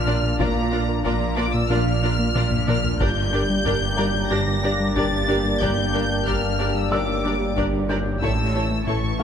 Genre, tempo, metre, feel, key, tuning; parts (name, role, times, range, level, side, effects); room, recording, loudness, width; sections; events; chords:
cinematic, hybrid orchestral and electronic film score; 92 BPM; 4/4; straight; A4 = 440 Hz
warm symphonic violin section; melody; 0.0-9.2 s; Bb5 to Bb6; -27 LUFS; left 3 dB
sweeping resonant pad; sustained chords; 0.0-9.2 s; E3 to A5; -28 LUFS; right 2 dB; chorus
bright symphonic double bass section; bass; 0.0-9.2 s; G1 to Bb1; -30 LUFS; right 5 dB
pure sine sub bass; bass; 0.0-9.2 s; G1 to Bb1; -29 LUFS; equal
rich studio cello section; bass; 0.0-9.2 s; G2 to Bb2; -30 LUFS; right 3 dB
rich symphonic violin section; second line; 0.1-9.2 s; A4 to D5; -31 LUFS; left 3 dB
rich symphonic viola section; accompaniment; 0.1-9.2 s; A3 to G4; -30 LUFS; right 1 dB
smooth synth bass; riff; 0.1-9.2 s; G2 to Bb3; -27 LUFS; left 2 dB
mellow French horn section; sustained chords; 0.4-9.2 s; A3 to F4; -31 LUFS; left 6 dB
taiko ensemble; drums; 0.4-9.2 s; -30 LUFS; equal
felt-muted upright piano; texture; 4.0-9.2 s; F5 to G6; -33 LUFS; left 1 dB; ping-pong delay
moderate scoring stage reverb, RT60 1.9 s; -19 LUFS; side -8 dB against mid
0.0-9.2 A section
drum fill 2.4-3.0
0.0 Bb; 3.0 Gm; 8.2 A